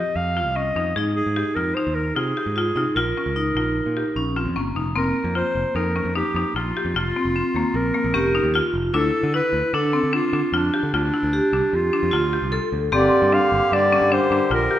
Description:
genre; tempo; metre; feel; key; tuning
contemporary instrumental, chamber music in an uneven meter; 151 BPM; 5/4; straight; unclear; A4 = 440 Hz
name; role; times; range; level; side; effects
clear clarinet; melody; 0.0-14.8 s; D4 to F5; -23 LUFS; left 1 dB; none
vibraphone with hard mallets; second line; 0.0-14.8 s; Bb3 to A4; -25 LUFS; right 1 dB; none
buzzing marimba with hard mallets; arpeggios; 0.0-14.8 s; Bb3 to A4; -26 LUFS; left 3 dB; none
picked electric bass; bass; 0.0-14.7 s; F1 to D3; -26 LUFS; right 1 dB; none
hand-pumped harmonium; sustained chords; 12.9-14.8 s; D3 to G4; -24 LUFS; equal; none
celesta; texture; 13.1-14.0 s; C6; -28 LUFS; left 2 dB; none
room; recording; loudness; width
moderate recital hall reverb, RT60 1.8 s; none; -19 LUFS; side -12 dB against mid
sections
0.0-5.0 A section; 5.0-14.8 B section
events
none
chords
0.0 F7(no3); 1.0 Ab; 3.0 Bbm; 5.0 Fsus4; 8.9 Dm; 12.9 Gm

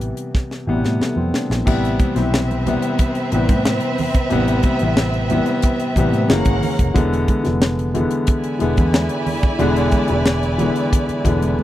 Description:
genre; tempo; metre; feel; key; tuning
lush 1970s-style soul; 91 BPM; 4/4; straight; A minor; A4 = 436 Hz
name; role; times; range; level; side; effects
warm grand piano; accompaniment; 0.0-11.6 s; B2 to E4; -20 LUFS; left 2 dB; none
vintage muted fingered electric bass; bass; 0.0-11.6 s; E1 to A2; -21 LUFS; equal; none
tight funk drum kit; drums; 0.0-11.6 s; crash cymbal, hi-hat, kick drum, snare drum; -19 LUFS; equal; none
warm studio violin section; second line; 1.7-11.6 s; C4 to G#5; -24 LUFS; right 2 dB; none
congas; percussion; 1.7-11.6 s; none; -28 LUFS; right 4 dB; none
room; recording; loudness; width
little or no reverb; dry, close 1970s-style studio recording; -16 LUFS; side -14 dB against mid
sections
0.0-1.7 A section; 1.7-11.6 B section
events
drum fill 0.3-1.7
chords
0.0 Am7; 1.7 Am9; 6.3 F#7; 7.0 E7

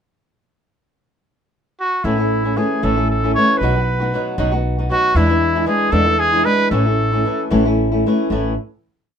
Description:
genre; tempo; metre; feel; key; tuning
mexican folk, mariachi; 77 BPM (dotted quarters); 6/8; rubato; A major; A4 = 440 Hz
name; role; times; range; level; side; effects
clear trumpet; melody; 1.8-7.5 s; E4 to C#5; -18 LUFS; right 1 dB; none
flamenco guitar; accompaniment; 2.0-8.5 s; E2 to F#4; -18 LUFS; left 1 dB; none
upright bass; bass; 2.0-8.6 s; A1 to E2; -20 LUFS; equal; none
room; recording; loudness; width
light reverb; minimal, uncompressed stereo recording; -15 LUFS; side -7 dB against mid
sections
0.5-2.0 pickup bar; 2.0-8.3 A section; 8.3-9.2 final chord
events
none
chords
0.5 N.C.; 2.0 A; 3.6 B; 5.2 E7; 6.7 A

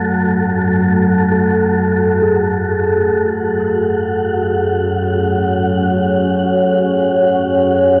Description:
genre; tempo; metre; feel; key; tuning
dark ambient drone; 66 BPM; 4/4; straight; F# minor; A4 = 440 Hz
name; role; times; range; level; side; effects
quartz singing bowl; arpeggios; 0.0-7.7 s; A3 to A4; -20 LUFS; equal; tape echo
deep rumbling drone; drone; 0.0-8.0 s; F#2 to F#3; -20 LUFS; equal; built-in reverb
wind-like tuned noise texture; texture; 0.0-8.0 s; F#4 to F#5; -22 LUFS; equal; built-in reverb
dark analog pad; sustained chords; 4.2-8.0 s; C#5 to G#5; -18 LUFS; equal; chorus, phaser
room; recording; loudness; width
wet huge ambient reverb, RT60 8.0 s; dark, warm production; -15 LUFS; mono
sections
0.0-3.1 A section; 3.1-8.0 B section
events
none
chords
0.0 F#madd9; 3.1 F#sus2

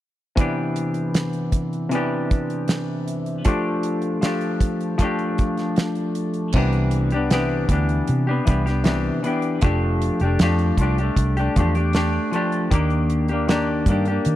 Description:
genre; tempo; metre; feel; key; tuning
indie pop, bedroom pop; 78 BPM; 4/4; straight; C major; A4 = 438 Hz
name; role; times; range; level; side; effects
semi-hollow electric guitar; accompaniment; 0.4-14.4 s; C3 to G4; -22 LUFS; left 1 dB; lush chorus, warbly pitch drift
damped 70s drum kit; drums; 0.4-14.4 s; crash cymbal, hi-hat, kick drum, snare drum; -20 LUFS; right 1 dB; none
vintage muted fingered electric bass; bass; 6.5-14.4 s; F1 to Eb3; -21 LUFS; equal; none
room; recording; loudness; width
small room reverb; dry, close 1970s-style studio recording; -19 LUFS; side -14 dB against mid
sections
0.4-6.5 A section; 6.5-14.4 B section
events
none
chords
0.4 Cmaj9; 3.5 F69; 6.5 Cmaj9; 9.6 F69; 12.7 Ebmaj7

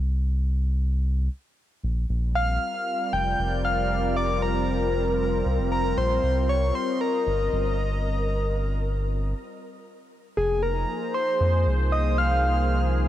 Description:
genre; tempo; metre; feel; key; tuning
IDM; 116 BPM; 4/4; straight; F minor; A4 = 440 Hz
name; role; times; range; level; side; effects
round analog bass; bass; 0.0-13.1 s; F1 to F2; -24 LUFS; equal; tube saturation
warm analog pad; sustained chords; 2.1-13.1 s; F3 to Eb5; -29 LUFS; equal; lush chorus
soft struck synth lead; melody; 2.4-13.1 s; Ab4 to G5; -26 LUFS; left 1 dB; chorus, cassette tape, digital delay
room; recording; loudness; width
light reverb; none; -22 LUFS; side -12 dB against mid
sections
0.0-10.4 A section; 10.4-13.1 B section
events
break 9.3-10.4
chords
0.0 N.C.; 2.1 Bb; 6.2 Cm7; 10.4 Fm

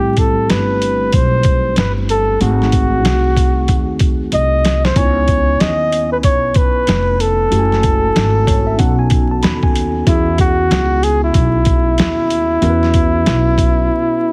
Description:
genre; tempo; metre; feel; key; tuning
hip hop, jazz-hop; 94 BPM; 4/4; swing 62% on 16ths; E major; A4 = 440 Hz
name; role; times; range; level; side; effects
breathy flugelhorn; melody; 0.0-14.3 s; E4 to D#5; -19 LUFS; equal; none
mellow tine electric piano; accompaniment; 0.0-14.3 s; G3 to B5; -23 LUFS; equal; none
upright bass; bass; 0.0-13.9 s; F1 to E2; -20 LUFS; equal; none
boom bap sampler-style drum kit; drums; 0.2-13.8 s; hi-hat, kick drum, snare drum; -18 LUFS; equal; none
room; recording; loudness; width
light reverb, small room reverb; heavily compressed radio sound, multiband compression, vinyl crackle; -14 LUFS; mono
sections
0.0-14.3 A section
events
drum fill 4.3-5.0; tine electric piano fill 8.2-10.1; break 13.9-14.3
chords
0.0 Am9; 2.4 G#7b9; 5.0 C#m9; 7.5 F#m9; 8.8 B7; 10.1 E69

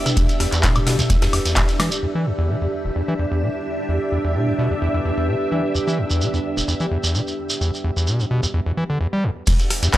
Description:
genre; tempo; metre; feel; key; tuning
acid house; 129 BPM; 4/4; straight; E minor; A4 = 440 Hz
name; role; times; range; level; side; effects
string machine, full ensemble; sustained chords; 0.0-10.0 s; D4 to E5; -26 LUFS; equal; ensemble chorus, sidechain pumping
deep dark ambient pad; texture; 0.0-8.5 s; D4 to F#5; -29 LUFS; right 1 dB; chorus, built-in reverb, sidechain pumping
booming analog drum machine; drums; 0.1-2.0, 9.5-10.0 s; crash cymbal, handclaps, hi-hat, rim click, snare drum, toms, woodblock; -22 LUFS; left 1 dB; none
shekere; percussion; 0.1-2.0, 5.8-10.0 s; none; -26 LUFS; right 2 dB; none
overdriven acid bass; riff; 0.2-10.0 s; E1 to G3; -22 LUFS; equal; distortion, sidechain pumping, analog delay
electronic kick drum; drums; 0.2-1.7, 9.5-10.0 s; none; -19 LUFS; equal; none
modern studio drum kit; drums; 0.2-1.9, 9.5-10.0 s; hi-hat, ride cymbal, snare drum; -32 LUFS; left 1 dB; sidechain pumping on cymbals, high-pass filter on cymbals, sidechain pumping on hats, high-pass filter on hats, high-pass filter on snare, high-pass filter on room
room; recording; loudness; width
small room ambience; dry, gritty hardware recording, transformer saturation; -18 LUFS; side -14 dB against mid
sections
0.0-2.0 A section; 2.0-9.5 B section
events
drum fill 1.8; band accent 1.8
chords
0.0 Em7

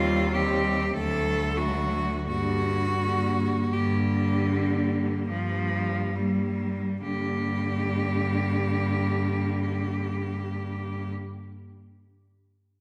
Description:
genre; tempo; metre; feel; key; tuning
classical, lyrical piece for cello ensemble; 33-52 BPM; 3/4; rubato; G minor; A4 = 439 Hz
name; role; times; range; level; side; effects
clear cello; melody; 0.0-11.1 s; F4 to A4; -33 LUFS; equal; none
clear cello; second line; 0.0-11.1 s; A3 to C4; -36 LUFS; equal; none
clear cello; accompaniment; 0.0-11.1 s; D3 to G3; -34 LUFS; equal; none
rich cello; bass; 0.0-11.1 s; D2 to G2; -30 LUFS; equal; none
room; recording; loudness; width
wet concert hall reverb, RT60 1.8 s; none; -27 LUFS; mono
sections
0.0-7.0 A section; 7.0-12.1 B section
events
slowing down 0.0-7.0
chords
0.0 Cm/Eb; 0.9 D; 2.3 Gm

